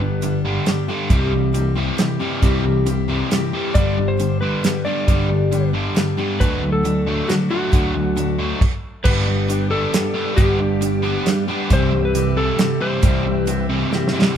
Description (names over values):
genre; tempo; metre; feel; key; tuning
folk rock and heartland rock; 136 BPM; 3/4; straight; G major; A4 = 442 Hz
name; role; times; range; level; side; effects
electric slide guitar; melody; 0.0-0.4, 3.7-13.7 s; F#4 to D5; -24 LUFS; equal; none
picked steel-string acoustic guitar; accompaniment; 0.0-14.4 s; G2 to A4; -26 LUFS; left 4 dB; none
crunchy overdriven guitar; riff; 0.0-14.4 s; G2 to D4; -22 LUFS; right 1 dB; spring reverb
picked electric bass; bass; 0.0-13.8 s; G1 to D2; -22 LUFS; equal; none
damped 70s drum kit; drums; 0.2-14.3 s; crash cymbal, hi-hat, kick drum, snare drum; -18 LUFS; right 1 dB; none
tonewheel organ; sustained chords; 9.0-14.4 s; C4 to E6; -34 LUFS; right 2 dB; slow rotary speaker, chorus vibrato
room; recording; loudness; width
moderate studio reverb, RT60 0.9 s; band playing live in one room; -16 LUFS; side -9 dB against mid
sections
0.0-9.1 A section; 9.1-14.4 A section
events
drum fill 13.9-14.4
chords
0.0 G; 1.1 C; 3.8 G; 6.4 D; 9.1 G; 11.7 C